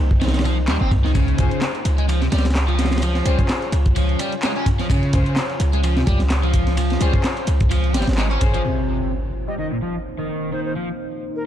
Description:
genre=breakbeat, breaks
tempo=128 BPM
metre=4/4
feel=swing 56% on 16ths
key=C phrygian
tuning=A4 = 440 Hz
part: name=deep dark ambient pad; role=sustained chords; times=0.0-11.5 s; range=Bb3 to Db5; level=-30 LUFS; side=equal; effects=chorus, built-in reverb, sidechain pumping
part: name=warm 808-style bass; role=bass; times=0.0-8.6 s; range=G1 to Eb2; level=-19 LUFS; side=equal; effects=none
part: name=crunchy breakbeat drum kit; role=drums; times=0.1-8.5 s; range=kick drum, ride cymbal, snare drum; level=-21 LUFS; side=equal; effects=none
part: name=crunchy overdriven guitar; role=riff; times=0.2-10.9 s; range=Bb2 to Db4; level=-24 LUFS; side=equal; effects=low-pass filter, digital delay
part: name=punchy analog drum machine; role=drums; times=0.7-8.6 s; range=handclaps, hi-hat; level=-30 LUFS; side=equal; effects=none
part: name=warm studio string section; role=stabs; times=1.4-8.6 s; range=Db4 to C5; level=-29 LUFS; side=left 4 dB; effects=digital delay
part: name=impact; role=sound effects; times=8.6-10.5 s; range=none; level=-28 LUFS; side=equal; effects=none
part: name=bright reedy wooden flute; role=melody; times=9.5-11.4 s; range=Bb4 to Eb5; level=-32 LUFS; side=left 1 dB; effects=small speaker sound, digital delay
room=little or no reverb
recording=dark, warm production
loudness=-17 LUFS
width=side -11 dB against mid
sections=0.0-8.6 A section; 8.6-11.5 B section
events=impact 8.6-10.5; filter sweep on overdriven electric guitar 8.6-11.5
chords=0.0 Cm7; 1.1 Dbmaj7; 8.6 Cm7

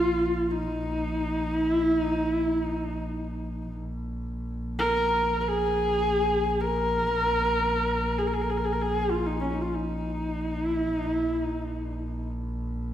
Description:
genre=mongolian traditional, Mongolian folk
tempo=free time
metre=none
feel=none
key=unclear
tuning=A4 = 441 Hz
part: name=warm horsehead fiddle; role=melody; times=0.0-12.3 s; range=Db4 to Bb4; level=-25 LUFS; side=equal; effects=none
part: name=clear double bass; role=drone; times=0.0-12.9 s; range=Bb1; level=-31 LUFS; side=equal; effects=none
room=wet recital hall reverb, RT60 1.8 s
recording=heard from further back in the room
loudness=-25 LUFS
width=side -11 dB against mid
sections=0.0-12.9 A section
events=none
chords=none

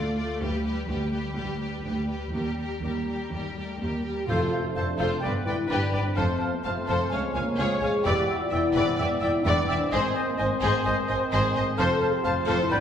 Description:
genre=cinematic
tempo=128 BPM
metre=4/4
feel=straight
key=F lydian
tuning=A4 = 440 Hz
part: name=warm symphonic violin section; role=melody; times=0.0-12.8 s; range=Bb4 to A5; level=-37 LUFS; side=left 4 dB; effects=none
part: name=warm symphonic violin section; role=second line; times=0.0-12.8 s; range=F4 to F5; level=-34 LUFS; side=left 2 dB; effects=none
part: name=warm symphonic viola section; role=accompaniment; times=0.0-12.8 s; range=G3 to D5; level=-32 LUFS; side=left 1 dB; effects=none
part: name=clear symphonic cello section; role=bass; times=0.0-12.8 s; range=Db2 to Ab2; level=-31 LUFS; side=right 1 dB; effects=none
part: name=warm symphonic double bass section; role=bass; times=0.0-12.8 s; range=E1 to Eb2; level=-33 LUFS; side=right 2 dB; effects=none
part: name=mellow French horn section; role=sustained chords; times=3.6-12.8 s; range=A3 to A4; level=-30 LUFS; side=left 2 dB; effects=none
part: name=silver concert flute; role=second line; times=4.3-12.8 s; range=F5 to B5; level=-35 LUFS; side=left 1 dB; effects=none
part: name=warm clarinet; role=second line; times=4.3-12.8 s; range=A4 to D5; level=-35 LUFS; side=left 1 dB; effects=none
part: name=warm oboe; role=second line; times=4.3-12.8 s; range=C5 to G5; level=-33 LUFS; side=equal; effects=none
part: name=warm trombone section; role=sustained chords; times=4.3-12.8 s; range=C3 to C4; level=-34 LUFS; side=right 3 dB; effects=none
part: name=mellow trumpet section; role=stabs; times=4.3-12.8 s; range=B4 to D5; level=-34 LUFS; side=equal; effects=none
part: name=timpani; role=percussion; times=4.3-5.0 s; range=F2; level=-35 LUFS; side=equal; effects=none
room=wet recital hall reverb, RT60 1.5 s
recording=recorded in a church or concert hall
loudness=-24 LUFS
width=side -8 dB against mid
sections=0.0-4.3 A section; 4.3-12.8 B section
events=build-up 0.0-4.3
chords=0.4 G/D; 2.3 Eb; 4.3 F; 5.2 G; 6.2 F; 7.1 Db; 8.1 Em7; 9.9 Ab; 11.8 F

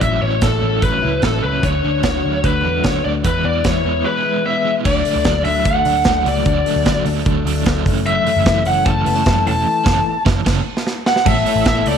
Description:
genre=jangly indie pop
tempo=150 BPM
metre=4/4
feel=straight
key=unclear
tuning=A4 = 440 Hz
part: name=biting lead guitar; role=melody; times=0.0-12.0 s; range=A4 to A5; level=-18 LUFS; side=left 2 dB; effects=overdrive
part: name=crunchy overdriven guitar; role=accompaniment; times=0.0-12.0 s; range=F#2 to C#5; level=-24 LUFS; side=right 12 dB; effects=tremolo
part: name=direct-recorded clean electric guitar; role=arpeggios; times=0.0-12.0 s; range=F#2 to A4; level=-23 LUFS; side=left 10 dB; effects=tremolo
part: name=vintage muted picked electric bass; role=bass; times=0.0-12.0 s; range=E1 to E2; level=-21 LUFS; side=right 1 dB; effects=none
part: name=big rock drum kit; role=drums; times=0.0-12.0 s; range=crash cymbal, hi-hat, kick drum, snare drum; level=-20 LUFS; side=right 1 dB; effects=none
part: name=glockenspiel with rubber mallets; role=second line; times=11.3-12.0 s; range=A5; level=-26 LUFS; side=right 20 dB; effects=none
room=light reverb, studio reverb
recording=1960s-style stereo with parts hard left and right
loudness=-14 LUFS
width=side -7 dB against mid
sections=0.0-4.9 A section; 4.9-11.3 B section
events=band accent 9.7-11.3; drum fill 10.5-11.3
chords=0.0 A6; 1.6 D; 3.2 E; 4.9 D; 7.9 F#m7; 11.3 Aadd9

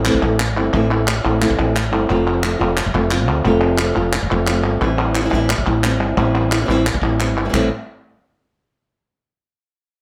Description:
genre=flamenco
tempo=176 BPM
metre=4/4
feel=straight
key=A minor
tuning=A4 = 440 Hz
part: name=flamenco guitar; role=melody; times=0.0-7.7 s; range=A2 to F4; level=-21 LUFS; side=equal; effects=none
part: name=woody fretless electric bass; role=bass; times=0.0-7.7 s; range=F1 to D2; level=-22 LUFS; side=equal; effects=none
part: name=palmas hand claps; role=percussion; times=0.1-7.6 s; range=none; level=-23 LUFS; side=equal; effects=none
room=moderate studio reverb, RT60 0.8 s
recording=none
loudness=-17 LUFS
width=mono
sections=0.0-7.5 A section; 7.5-8.9 B section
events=none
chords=0.0 Am; 2.1 F; 4.8 Am7; 7.5 N.C.

